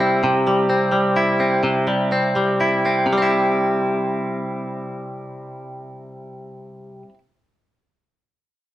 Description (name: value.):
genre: pop.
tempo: 40-44 BPM (dotted quarters).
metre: 6/8.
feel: straight.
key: C major.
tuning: A4 = 440 Hz.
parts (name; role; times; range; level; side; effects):
direct-recorded clean electric guitar; accompaniment; 0.0-7.2 s; C3 to E4; -18 LUFS; equal; vibrato effect.
room: wet studio reverb, RT60 0.5 s.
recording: band playing live in one room.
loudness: -17 LUFS.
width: side -14 dB against mid.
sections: 0.0-3.1 A section; 3.1-6.1 B section.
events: slowing down 0.0-3.1.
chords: 0.0 C.